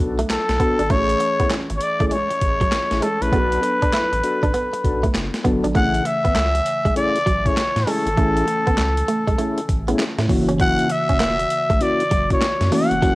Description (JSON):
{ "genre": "R&B, new jack swing", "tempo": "99 BPM", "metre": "4/4", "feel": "swing 64% on 16ths", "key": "unclear", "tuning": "A4 = 441 Hz", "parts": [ { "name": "mellow FM electric piano", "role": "accompaniment", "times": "0.0-13.2 s", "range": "C#3 to G#5", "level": "-27 LUFS", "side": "equal", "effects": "chorus, phaser, cassette tape" }, { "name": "mellow tonewheel organ", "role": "stabs", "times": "0.0-13.2 s", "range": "A3 to A4", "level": "-25 LUFS", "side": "left 2 dB", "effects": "chorus vibrato, slow rotary speaker, cassette tape" }, { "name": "round analog bass", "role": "bass", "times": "0.0-13.2 s", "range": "E1 to A2", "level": "-25 LUFS", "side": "equal", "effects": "transformer saturation" }, { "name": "direct-recorded clean electric guitar", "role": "riff", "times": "0.2-13.2 s", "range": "F#3 to E4", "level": "-26 LUFS", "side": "right 3 dB", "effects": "lush chorus, cassette tape" }, { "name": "boom bap sampler-style drum kit", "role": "drums", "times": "0.2-13.2 s", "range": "handclaps, hi-hat, kick drum, snare drum, tambourine", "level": "-23 LUFS", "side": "equal", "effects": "cassette tape" }, { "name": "growling trumpet", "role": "melody", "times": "0.3-13.2 s", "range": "A4 to F#5", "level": "-20 LUFS", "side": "left 1 dB", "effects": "cassette tape" } ], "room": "light reverb", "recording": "home recording on cassette", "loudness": "-17 LUFS", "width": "side -19 dB against mid", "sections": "0.0-5.8 A section; 5.8-13.2 B section", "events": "none", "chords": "0.0 Bm7; 0.9 Amaj7; 3.3 Bm7; 5.8 Amaj7; 10.3 F#7" }